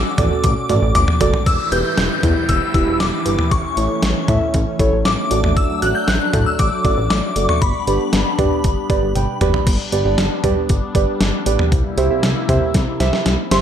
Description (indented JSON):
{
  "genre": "synth-pop",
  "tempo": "117 BPM",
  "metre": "4/4",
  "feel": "straight",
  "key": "unclear",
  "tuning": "A4 = 440 Hz",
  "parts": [
    { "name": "shimmering bell with halo", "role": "melody", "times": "0.0-9.4, 13.5-13.6 s", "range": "B5 to G6", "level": "-22 LUFS", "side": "left 3 dB", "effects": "ensemble chorus, tape echo" },
    { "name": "phased analog pad", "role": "sustained chords", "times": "0.0-13.6 s", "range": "C3 to B4", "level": "-25 LUFS", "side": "left 1 dB", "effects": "phaser, chorus" },
    { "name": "chorused synth bass", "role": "bass", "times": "0.0-13.6 s", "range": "E1 to C3", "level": "-20 LUFS", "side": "equal", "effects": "none" },
    { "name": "muted felt-like synth keys", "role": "accompaniment", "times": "0.2-13.6 s", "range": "E4 to B5", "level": "-21 LUFS", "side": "right 3 dB", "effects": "chorus" },
    { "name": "clean 12-bit digital drum machine", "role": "drums", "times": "0.2-13.6 s", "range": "cowbell, crash cymbal, hi-hat, kick drum, snare drum, toms", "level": "-19 LUFS", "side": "equal", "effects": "overdrive, gated reverb" },
    { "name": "downlifter", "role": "sound effects", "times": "1.5-5.6 s", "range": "none", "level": "-29 LUFS", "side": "right 1 dB", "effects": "none" }
  ],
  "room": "light reverb",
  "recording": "none",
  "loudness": "-15 LUFS",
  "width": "side -9 dB against mid",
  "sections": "0.0-1.5 A section; 1.5-9.7 B section; 9.7-13.6 C section",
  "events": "drum fill 0.4-1.5, 9.2-9.7, 12.7-13.6; synth keys fill 8.9-9.7",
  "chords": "0.0 D; 1.5 Em; 3.5 A; 5.3 D/A; 7.6 G; 11.7 C7",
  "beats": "0.44 0.95 | 1.46 1.98 2.49 3.00 | 3.52 4.03 4.54 5.05 | 5.57 6.08 6.59 7.10 | 7.62 8.13 8.64 9.16 | 9.67 10.18 10.69 11.21 | 11.72 12.23 12.75 13.26"
}